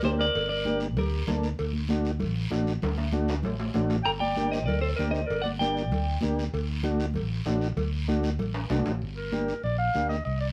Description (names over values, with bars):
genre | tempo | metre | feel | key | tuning
latin, cumbia | 194 BPM | 4/4 | straight | unclear | A4 = 444 Hz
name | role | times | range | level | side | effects
clean electric guitar | melody | 0.0-1.3, 4.1-6.2 s | Bb4 to Bb5 | -32 LUFS | equal | spring reverb
breathy clarinet | second line | 0.0-1.3, 4.0-6.2, 9.2-10.5 s | G4 to G5 | -34 LUFS | equal | none
combo organ | accompaniment | 0.0-10.2 s | A3 to A4 | -33 LUFS | equal | none
fingered electric bass | bass | 0.0-10.5 s | G1 to D2 | -32 LUFS | equal | none
congas | percussion | 0.0-10.4 s | none | -36 LUFS | equal | none
guiro | percussion | 0.0-10.5 s | none | -45 LUFS | equal | none
timbales and cowbell | percussion | 0.0-8.9 s | none | -38 LUFS | equal | none
room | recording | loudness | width
light reverb | none | -28 LUFS | mono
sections
0.0-9.0 A section; 9.0-10.5 B section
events
drum fill 2.8-4.1, 8.5-9.0; clarinet solo 9.0-10.5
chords
0.0 Gm; 1.6 D; 4.1 Gm; 6.5 D; 9.0 Gm